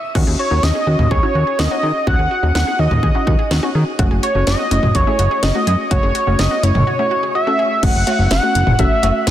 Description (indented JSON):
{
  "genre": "synth-pop",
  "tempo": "125 BPM",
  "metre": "4/4",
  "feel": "straight",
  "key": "unclear",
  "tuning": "A4 = 439 Hz",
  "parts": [
    { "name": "warbly dusty pluck", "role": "accompaniment", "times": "0.1-9.3 s", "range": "A3 to G#4", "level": "-23 LUFS", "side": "left 1 dB", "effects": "chorus, shimmer reverb" },
    { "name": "wide unison pluck", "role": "arpeggios", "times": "0.1-7.8 s", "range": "C#4 to G#4", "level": "-29 LUFS", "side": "right 2 dB", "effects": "shimmer reverb, digital delay" },
    { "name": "fat analog bass", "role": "bass", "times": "0.2-9.3 s", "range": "F#1 to D#3", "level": "-17 LUFS", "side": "equal", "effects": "none" },
    { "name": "house drum kit", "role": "drums", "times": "0.2-9.3 s", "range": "cowbell, crash cymbal, hi-hat, kick drum, snare drum, toms", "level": "-19 LUFS", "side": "equal", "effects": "none" },
    { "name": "wide unison lead", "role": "melody", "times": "0.4-9.3 s", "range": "C#5 to F#5", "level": "-18 LUFS", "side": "equal", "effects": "shimmer reverb, digital delay" }
  ],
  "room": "moderate lush hall reverb, RT60 2.2 s",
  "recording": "dense, heavily limited modern master",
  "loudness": "-13 LUFS",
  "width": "side -12 dB against mid",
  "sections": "0.1-7.8 A section; 7.8-9.3 B section",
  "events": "stop 0.0",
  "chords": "0.1 D#m7; 4.0 F#m",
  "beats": "| 0.15 0.63 1.11 1.59 | 2.07 2.55 3.03 3.51 | 3.99 4.47 4.95 5.43 | 5.91 6.39 6.87 7.35 | 7.83 8.31 8.79 9.27"
}